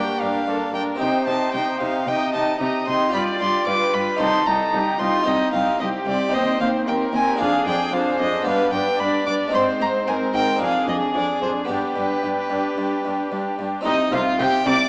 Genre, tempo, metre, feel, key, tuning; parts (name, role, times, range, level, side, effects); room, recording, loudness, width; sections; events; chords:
classical, baroque-style concerto movement with solo episodes; 112 BPM; 4/4; straight; C minor from 5.3 s; A4 = 440 Hz
rich violin; melody; 0.0-14.9 s; B4 to D6; -23 LUFS; equal
warm chamber violin section; melody; 0.0-14.9 s; G4 to D6; -29 LUFS; equal
rich chamber violin section; second line; 0.0-14.9 s; Eb4 to Eb5; -25 LUFS; equal
harpsichord; accompaniment; 0.0-14.9 s; C2 to Eb5; -26 LUFS; equal
warm chamber viola section; accompaniment; 0.0-14.7 s; C4 to F4; -26 LUFS; equal
warm chamber cello section; bass; 0.2-14.7 s; C2 to C3; -30 LUFS; equal
rich chamber double bass section; bass; 13.9-14.7 s; C2; -33 LUFS; equal
wet scoring stage reverb, RT60 1.6 s; worn, warbling old tape, cassette tape, warbly pitch drift, small speaker sound; -18 LUFS; side -40 dB against mid
0.0-13.9 A section; 13.9-14.9 B section
0.0 Gm; 1.0 Cm; 3.1 G7; 4.2 Cm; 6.3 Cm/Eb; 7.4 Ddim/F; 8.5 G; 9.5 Ab; 10.6 Dm7b5/F; 11.7 G; 13.9 Cm